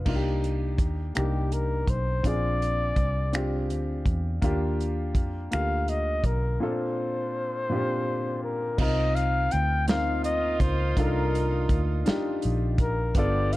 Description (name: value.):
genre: slow six-eight R&B.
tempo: 55 BPM (dotted quarters).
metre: 6/8.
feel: straight.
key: C dorian.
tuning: A4 = 440 Hz.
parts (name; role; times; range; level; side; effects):
warm baby grand piano; accompaniment; 0.0-13.6 s; Bb2 to Bb4; -30 LUFS; left 1 dB; none.
vintage muted fingered electric bass; bass; 0.0-13.6 s; G1 to F2; -27 LUFS; equal; none.
warm soul drum kit; drums; 0.1-13.6 s; crash cymbal, finger snaps, hi-hat, kick drum, snare drum; -27 LUFS; equal; none.
breathy flugelhorn; melody; 1.2-13.6 s; G4 to G5; -29 LUFS; left 2 dB; slapback echo.
warm horn section; stabs; 9.9-13.6 s; D3 to G4; -34 LUFS; right 4 dB; slapback echo.
room: small room ambience.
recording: dark, warm production.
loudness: -24 LUFS.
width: side -17 dB against mid.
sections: 0.1-8.8 A section; 8.8-13.6 B section.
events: break 6.6-8.8.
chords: 0.1 Cm7; 2.2 Bb9; 4.4 Ebmaj9; 6.6 Bbmaj9; 8.8 Cm11.